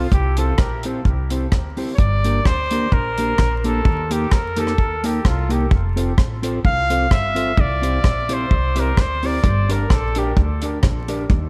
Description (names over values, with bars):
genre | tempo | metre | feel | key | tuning
ska | 129 BPM | 4/4 | swing 55% on 8ths | unclear | A4 = 440 Hz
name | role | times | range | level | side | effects
warm trumpet | melody | 0.0-10.4 s | F4 to F5 | -26 LUFS | equal | dub echo
mellow electric guitar | accompaniment | 0.0-11.2 s | Bb3 to D5 | -28 LUFS | equal | spring reverb
upright bass | bass | 0.0-11.5 s | F1 to F2 | -24 LUFS | equal | none
deep reggae drum kit | drums | 0.1-11.4 s | hi-hat, kick drum, rim click | -20 LUFS | equal | none
room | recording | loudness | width
light reverb | vinyl crackle | -19 LUFS | mono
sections
0.0-11.5 A section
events
trumpet solo 0.0-11.5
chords
0.1 C; 2.0 Gm; 3.8 Eb; 5.7 F; 7.6 C; 9.4 Gm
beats
| 0.12 0.58 1.05 1.52 | 1.98 2.45 2.92 3.38 | 3.85 4.32 4.78 5.25 | 5.71 6.18 6.65 7.11 | 7.58 8.04 8.51 8.98 | 9.44 9.91 10.37 10.84 | 11.31